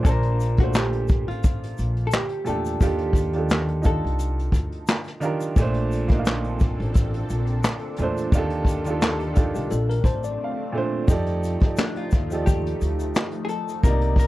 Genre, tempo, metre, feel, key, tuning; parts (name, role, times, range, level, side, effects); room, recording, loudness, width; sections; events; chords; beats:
lo-fi hip hop; 87 BPM; 4/4; swing 55% on 16ths; Bb major; A4 = 439 Hz
warm upright piano; accompaniment; 0.0-14.3 s; Bb2 to A5; -28 LUFS; right 3 dB; cassette tape
vintage brush drum kit; drums; 0.0-14.3 s; handclaps, hi-hat, kick drum, snare drum; -21 LUFS; equal
vintage hollow-body jazz guitar; melody; 0.1-5.2, 11.8-14.3 s; D4 to Bb4; -30 LUFS; left 2 dB; tape echo
upright bass; bass; 0.1-14.3 s; A1 to F2; -25 LUFS; equal
egg shaker; percussion; 0.1-14.3 s; -45 LUFS; left 8 dB
lush unison pad; sustained chords; 6.1-14.3 s; C3 to D5; -34 LUFS; left 1 dB; chorus, phaser
tine electric piano; second line; 9.6-11.0 s; G4 to D5; -30 LUFS; left 6 dB; tape echo
little or no reverb; dark, warm production; -20 LUFS; side -16 dB against mid
0.0-11.1 A section; 11.1-14.3 B section
break 10.4-11.1
0.0 Bbmaj9; 2.8 Ebmaj9#11; 5.6 Bbmaj9; 8.3 Ebmaj9#11; 9.7 Bbmaj9; 11.1 F13
| 0.05 0.74 1.43 2.12 | 2.81 3.50 4.19 4.88 | 5.57 6.26 6.95 7.64 | 8.32 9.02 9.70 10.39 | 11.08 11.77 12.46 13.15 | 13.84